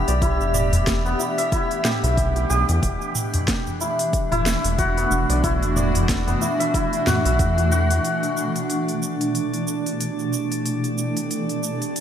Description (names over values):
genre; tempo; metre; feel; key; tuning
organic downtempo; 92 BPM; 4/4; swing 57% on 16ths; E minor; A4 = 440 Hz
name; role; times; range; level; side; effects
granular cloud pad; sustained chords; 0.0-12.0 s; B2 to G4; -26 LUFS; equal; built-in reverb, sidechain pumping
santur; arpeggios; 0.0-11.0 s; B3 to E5; -24 LUFS; left 2 dB; digital delay
round analog bass; bass; 0.0-8.0 s; E1 to E2; -22 LUFS; equal; sidechain pumping
afro-pop drum kit; drums; 0.1-12.0 s; hi-hat, shaker, snare drum, toms; -27 LUFS; right 1 dB; studio reverb
electronic kick drum; drums; 0.2-7.5 s; none; -25 LUFS; equal; studio reverb
udu; percussion; 0.7-7.2 s; none; -25 LUFS; left 1 dB; none
drifting glass-harmonics texture; texture; 8.6-12.0 s; D4 to D5; -33 LUFS; right 3 dB; chorus, built-in reverb
room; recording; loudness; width
light reverb, digital ambience; none; -19 LUFS; side -9 dB against mid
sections
0.0-8.0 A section; 8.0-12.0 B section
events
filter sweep on ambient pad 8.0-12.0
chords
0.0 Em7; 2.8 D/E; 8.0 Em7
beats
| 0.22 0.87 1.52 2.18 | 2.83 3.48 4.13 4.79 | 5.44 6.09 6.74 7.39 | 8.05 8.70 9.35 10.00 | 10.65 11.31 11.96